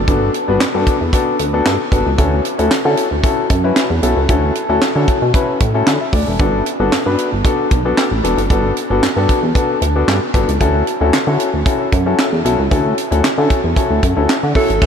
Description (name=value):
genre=early-eighties boogie funk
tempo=114 BPM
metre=4/4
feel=straight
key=unclear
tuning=A4 = 439 Hz
part: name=chorused synth bass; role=bass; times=0.0-14.9 s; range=E1 to D3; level=-17 LUFS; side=right 1 dB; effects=none
part: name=warm grand piano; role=accompaniment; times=0.1-14.9 s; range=B3 to E5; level=-16 LUFS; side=left 3 dB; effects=none
part: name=tight funk drum kit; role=drums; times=0.1-14.9 s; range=crash cymbal, handclaps, hi-hat, kick drum, snare drum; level=-18 LUFS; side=right 1 dB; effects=none
part: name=breathy alto saxophone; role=melody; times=14.6-14.9 s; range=A4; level=-16 LUFS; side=right 6 dB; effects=none
room=moderate huge ambient reverb, RT60 8.1 s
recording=dreamy mix soaked in reverb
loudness=-13 LUFS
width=side -7 dB against mid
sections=0.0-14.8 A section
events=none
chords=0.0 Gmaj9; 2.2 Dmaj9; 6.4 Gmaj9; 10.6 Dmaj9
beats=| 0.08 0.61 1.13 1.66 | 2.19 2.71 3.24 3.76 | 4.29 4.82 5.34 5.87 | 6.40 6.92 7.45 7.97 | 8.50 9.03 9.55 10.08 | 10.61 11.13 11.66 12.19 | 12.71 13.24 13.76 14.29 | 14.82